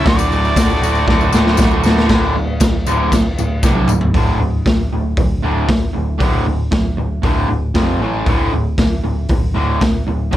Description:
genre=garage rock duo or trio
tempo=117 BPM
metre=4/4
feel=straight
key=D major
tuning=A4 = 441 Hz
part: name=mellow harmonica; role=melody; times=0.0-1.6 s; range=D5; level=-21 LUFS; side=equal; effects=overdrive
part: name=raw garage guitar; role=riff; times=0.0-10.4 s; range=D2 to F#4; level=-19 LUFS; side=right 1 dB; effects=overdrive
part: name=hollow-body short-scale picked electric bass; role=bass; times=0.1-10.4 s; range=D1 to C2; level=-20 LUFS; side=equal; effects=overdrive
part: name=raw garage drum kit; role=drums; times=0.1-10.4 s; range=crash cymbal, hi-hat, kick drum, snare drum, toms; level=-16 LUFS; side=equal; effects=none
part: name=tambourine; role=percussion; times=0.2-4.0 s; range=none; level=-30 LUFS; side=left 14 dB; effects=none
room=little or no reverb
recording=none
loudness=-13 LUFS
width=side -13 dB against mid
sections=0.0-2.1 A section; 2.1-4.2 B section; 4.2-10.4 C section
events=drum fill 1.1-2.1, 3.6-4.2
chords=0.1 D; 2.1 D5; 7.8 F5; 8.0 A5; 8.3 D5

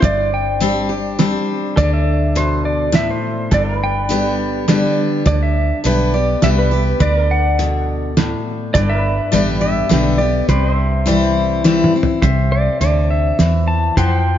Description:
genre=honky-tonk and classic country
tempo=103 BPM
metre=3/4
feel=straight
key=C major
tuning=A4 = 444 Hz
part: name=pedal steel guitar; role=melody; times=0.0-14.4 s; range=B4 to A5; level=-20 LUFS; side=equal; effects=none
part: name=picked steel-string acoustic guitar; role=accompaniment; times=0.0-14.4 s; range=G2 to G4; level=-18 LUFS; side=left 3 dB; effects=none
part: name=pedal steel guitar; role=sustained chords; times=0.0-14.4 s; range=A4 to G5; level=-27 LUFS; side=right 2 dB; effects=none
part: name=vintage muted fingered electric bass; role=bass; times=0.0-14.4 s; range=G1 to F2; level=-18 LUFS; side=equal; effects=none
part: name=cloth-damped thuddy drum kit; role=drums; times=0.0-14.1 s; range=hi-hat, kick drum, snare drum, toms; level=-19 LUFS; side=right 2 dB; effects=none
room=moderate plate reverb, RT60 2.3 s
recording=heard from further back in the room, nothing above 7.5 kHz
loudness=-14 LUFS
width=side -10 dB against mid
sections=0.0-12.2 A section; 12.2-14.4 B section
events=drum fill 11.6-12.2; pedal steel guitar solo 12.2-14.4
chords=0.0 Gsus4; 1.8 D5; 3.5 G; 7.0 D; 8.7 G; 10.5 C

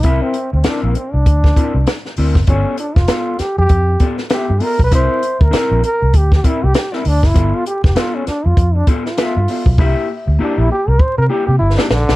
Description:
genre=funk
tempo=99 BPM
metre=4/4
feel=swing 60% on 16ths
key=unclear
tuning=A4 = 440 Hz
part: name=warm trombone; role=melody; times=0.0-12.2 s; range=D3 to C5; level=-19 LUFS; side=right 1 dB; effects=none
part: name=mellow electric guitar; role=accompaniment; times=0.0-12.1 s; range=Bb3 to E5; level=-22 LUFS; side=left 4 dB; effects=tube saturation, spring reverb
part: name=vintage muted fingered electric bass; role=bass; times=0.0-12.2 s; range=F1 to C3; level=-14 LUFS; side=equal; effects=none
part: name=compact cocktail drum kit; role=drums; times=0.0-12.2 s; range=hi-hat, kick drum, snare drum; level=-14 LUFS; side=equal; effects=none
room=little or no reverb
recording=vinyl crackle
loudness=-12 LUFS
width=side -18 dB against mid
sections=0.0-12.2 A section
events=trombone solo 0.0-12.2; drum fill 9.8-12.2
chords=0.1 C9; 2.5 G9; 4.9 C9; 7.3 G9 (rootless); 9.8 C9

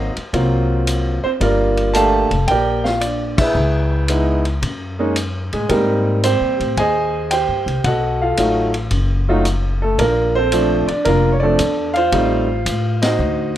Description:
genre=jazz piano trio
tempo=112 BPM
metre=4/4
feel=swing 68% on 8ths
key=unclear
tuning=A4 = 440 Hz
part: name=clear concert grand piano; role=melody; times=0.0-13.6 s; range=F3 to A5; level=-17 LUFS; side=right 1 dB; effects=none
part: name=upright bass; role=bass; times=0.0-13.6 s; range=F1 to Bb2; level=-20 LUFS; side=left 1 dB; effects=none
part: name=vintage drum kit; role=drums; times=0.2-13.1 s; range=crash cymbal, hi-hat, kick drum, ride cymbal, snare drum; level=-26 LUFS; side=left 1 dB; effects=none
room=light reverb, studio ambience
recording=rough home demo mix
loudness=-15 LUFS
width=side -12 dB against mid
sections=0.0-13.6 A section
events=band accent 3.3, 12.9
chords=0.0 Ab13 (rootless); 1.4 Gm9; 3.6 C#m7; 4.6 F#sus2; 5.7 Abmaj9; 7.8 B7#11; 10.0 Bbmaj9; 12.1 Am7b5

